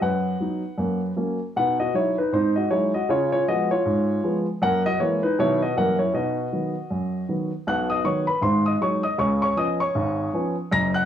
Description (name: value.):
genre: jazz, stride piano.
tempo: 157 BPM.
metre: 4/4.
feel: swing 60% on 8ths.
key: B major.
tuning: A4 = 440 Hz.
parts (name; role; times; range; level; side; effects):
warm baby grand piano; solo; 0.0-11.1 s; F#1 to A#6; -21 LUFS; equal; none.
room: moderate studio reverb, RT60 0.6 s.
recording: worn, warbling old tape, cassette tape, warbly pitch drift, small room ambience.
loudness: -21 LUFS.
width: side -9 dB against mid.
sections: 0.0-7.7 A section; 7.7-11.1 A section.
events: none.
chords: 0.0 B/F#; 0.8 F#; 1.6 B; 2.3 G#7; 3.1 C#7; 4.6 F#9; 5.4 B; 5.8 F#7b9; 6.1 B; 8.4 G#7; 9.2 C#7.